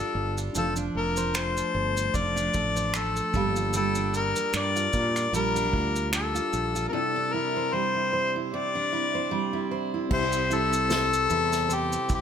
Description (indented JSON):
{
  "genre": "acoustic pop",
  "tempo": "75 BPM",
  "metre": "4/4",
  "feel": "swing 55% on 16ths",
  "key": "unclear",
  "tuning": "A4 = 438 Hz",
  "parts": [
    { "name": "warm harmonica", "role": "melody", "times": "0.0-12.2 s", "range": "G4 to D5", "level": "-27 LUFS", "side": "left 4 dB", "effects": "digital delay" },
    { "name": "mellow reed electric piano", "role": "accompaniment", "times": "0.0-12.2 s", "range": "Bb3 to A5", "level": "-37 LUFS", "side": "left 3 dB", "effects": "fast tremolo" },
    { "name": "picked steel-string acoustic guitar", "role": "accompaniment", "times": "0.0-12.2 s", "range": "C3 to C5", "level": "-30 LUFS", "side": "right 4 dB", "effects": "none" },
    { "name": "fretless electric bass", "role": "bass", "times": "0.1-12.2 s", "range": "F1 to Bb2", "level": "-31 LUFS", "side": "right 1 dB", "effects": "analog chorus" },
    { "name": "unplugged drum kit", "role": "drums", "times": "0.4-12.2 s", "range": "crash cymbal, finger snaps, kick drum, shaker, snare drum", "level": "-32 LUFS", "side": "right 1 dB", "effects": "none" }
  ],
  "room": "moderate studio reverb, RT60 0.8 s",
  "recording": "none",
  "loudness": "-24 LUFS",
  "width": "side -8 dB against mid",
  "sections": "0.0-10.1 A section; 10.1-12.2 B section",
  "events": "none",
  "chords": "0.0 Gm7; 0.6 F6; 3.3 Gm7; 6.9 Cadd9; 10.1 C"
}